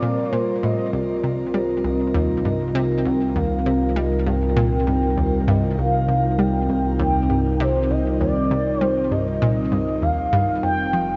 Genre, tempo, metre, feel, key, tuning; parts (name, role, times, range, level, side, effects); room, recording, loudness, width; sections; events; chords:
ambient, sequencer-driven space music; 99 BPM; 4/4; straight; C minor; A4 = 443 Hz
expressive synth lead; melody; 0.0-11.2 s; C5 to G5; -28 LUFS; equal; analog chorus, shimmer reverb, tape echo
sweeping resonant pad; sustained chords; 0.0-11.2 s; G3 to C5; -25 LUFS; equal; chorus, shimmer reverb
analog pluck; riff; 0.0-11.2 s; C2 to G3; -27 LUFS; equal; chorus, vintage 12-bit sampler grit, tape echo
fat analog bass; bass; 0.9-11.2 s; F1 to C2; -28 LUFS; equal; tube saturation
wet plate reverb, RT60 2.8 s; nothing above 7.7 kHz; -21 LUFS; mono
0.9-11.2 A section
0.0 Bb6; 0.9 Cm7; 10.6 F7sus4